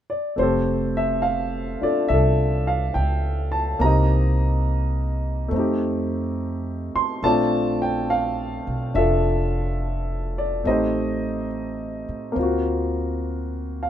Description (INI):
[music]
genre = jazz ballad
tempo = 70 BPM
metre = 4/4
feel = swing 68% on 8ths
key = F major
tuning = A4 = 442 Hz
[part]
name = warm upright piano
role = accompaniment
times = 0.1-13.9 s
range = A3 to C6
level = -22 LUFS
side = equal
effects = none
[part]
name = upright bass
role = bass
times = 0.4-13.9 s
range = F1 to A2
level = -24 LUFS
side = equal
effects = none
[sound]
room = little or no reverb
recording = minimal, uncompressed stereo recording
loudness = -20 LUFS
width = side -10 dB against mid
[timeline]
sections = 0.4-13.9 A section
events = none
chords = 0.4 Fadd9; 3.8 Cm7; 5.5 F7; 7.2 Bbmaj7; 10.6 Am7b5; 12.4 D7alt